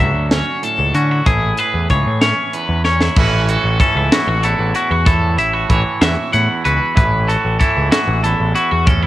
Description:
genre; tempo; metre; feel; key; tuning
math rock and midwest emo; 63 BPM (dotted quarters); 6/8; straight; A major; A4 = 441 Hz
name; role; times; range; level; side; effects
twangy electric guitar; accompaniment; 0.0-9.1 s; E2 to G#4; -20 LUFS; right 6 dB; spring reverb, cassette tape
twangy electric guitar; arpeggios; 0.0-9.1 s; F#4 to F#5; -18 LUFS; left 4 dB; cassette tape
growling picked electric bass; bass; 0.0-9.1 s; A1 to D3; -18 LUFS; equal; overdrive
crisp fusion drum kit; drums; 0.3-9.0 s; crash cymbal, hi-hat, kick drum, snare drum; -17 LUFS; equal; cassette tape
room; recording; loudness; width
small room ambience; home recording on cassette; -13 LUFS; side -15 dB against mid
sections
0.0-3.2 A section; 3.2-9.1 B section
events
drum fill 2.8-3.2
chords
0.0 Dmaj9; 1.3 Amaj9; 3.2 A69

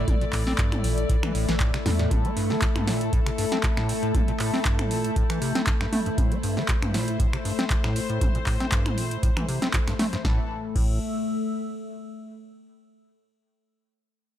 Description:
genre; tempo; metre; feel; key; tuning
acid house; 118 BPM; 4/4; swing 54% on 16ths; A minor; A4 = 441 Hz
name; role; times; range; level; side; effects
warm studio string section; sustained chords; 0.0-10.5 s; A2 to D5; -34 LUFS; left 2 dB; sidechain pumping
acid bass, square; riff; 0.0-11.0 s; G2 to C4; -29 LUFS; equal; tape echo
warm sub bass; bass; 0.0-2.1, 10.2-11.0 s; A1 to E2; -27 LUFS; equal; sidechain pumping
warbly tape-like pad; texture; 0.0-12.2 s; A3 to G6; -31 LUFS; left 2 dB; chorus, built-in reverb, sidechain pumping
electro analog drum machine; drums; 0.1-10.9 s; crash cymbal, finger snaps, handclaps, hi-hat, snare drum, toms; -30 LUFS; equal; studio ambience
electronic kick drum; drums; 0.1-10.9 s; none; -25 LUFS; equal; overdrive, studio ambience
room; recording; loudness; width
light reverb; dry, gritty hardware recording; -22 LUFS; side -11 dB against mid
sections
0.0-10.2 A section; 10.2-12.3 B section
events
none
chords
0.0 A5

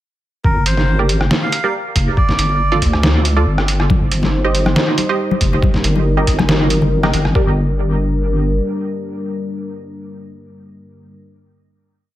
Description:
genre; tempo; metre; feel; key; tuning
deep dubstep; 139 BPM; 4/4; swing 53% on 16ths, half-time; G minor; A4 = 441 Hz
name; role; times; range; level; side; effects
melodica; melody; 0.4-2.8 s; Bb4 to F5; -22 LUFS; right 1 dB; dub echo
deep soft wobble bass; bass; 0.4-8.6 s; F1 to D2; -16 LUFS; equal; chorus
electronic kick drum; drums; 0.4-7.4 s; none; -16 LUFS; equal; overdrive, studio reverb
trip hop sampler-style drum kit; drums; 0.7-7.3 s; hi-hat, rim click, snare drum; -18 LUFS; equal; overdrive, studio reverb
filtered dub chord stab; stabs; 1.0-11.1 s; F4 to Eb5; -22 LUFS; right 2 dB; phaser, analog chorus, dub echo
dark analog pad; sustained chords; 3.9-11.1 s; G3 to C5; -22 LUFS; left 1 dB; chorus
congas; percussion; 3.9-7.1 s; none; -22 LUFS; left 4 dB; dub echo
room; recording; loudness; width
light reverb, digital ambience; echo-heavy mix; -13 LUFS; side -14 dB against mid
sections
0.4-7.4 drop; 7.4-10.8 final chord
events
drop 0.4-7.4; band accent 7.0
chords
0.4 Gm; 2.2 Dm/G; 3.9 Cm/G; 5.6 Eb/G; 7.4 Gm

